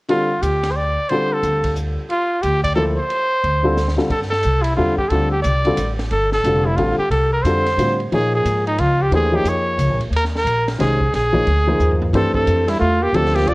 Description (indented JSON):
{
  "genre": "modal jazz",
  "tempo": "179 BPM",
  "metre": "3/4",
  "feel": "swing 64% on 8ths",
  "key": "unclear",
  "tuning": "A4 = 440 Hz",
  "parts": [
    { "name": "brilliant trumpet", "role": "melody", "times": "0.1-13.5 s", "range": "Eb4 to D5", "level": "-19 LUFS", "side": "equal", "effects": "none" },
    { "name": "warm baby grand piano", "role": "accompaniment", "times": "0.1-13.5 s", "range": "D3 to Db5", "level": "-21 LUFS", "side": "left 1 dB", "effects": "none" },
    { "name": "open jazz drum kit", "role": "drums", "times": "0.1-13.5 s", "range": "hi-hat, kick drum, ride cymbal, snare drum, toms", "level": "-30 LUFS", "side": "equal", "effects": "none" },
    { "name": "upright bass", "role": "bass", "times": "0.4-13.5 s", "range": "F1 to Bb2", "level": "-20 LUFS", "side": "equal", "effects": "none" },
    { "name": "breathy alto saxophone", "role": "second line", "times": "12.2-13.5 s", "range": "G3 to F4", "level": "-23 LUFS", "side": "right 2 dB", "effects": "none" }
  ],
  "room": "moderate spring reverb, RT60 1.2 s, small room reverb",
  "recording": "worn, warbling old tape, cassette tape, warbly pitch drift",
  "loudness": "-16 LUFS",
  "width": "side -22 dB against mid",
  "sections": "0.1-4.1 A section; 4.1-13.5 B section",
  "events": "drum fill 3.8-4.1, 11.8-12.1",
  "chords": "0.1 G9sus4; 8.1 Eb9sus4; 12.1 G9sus4"
}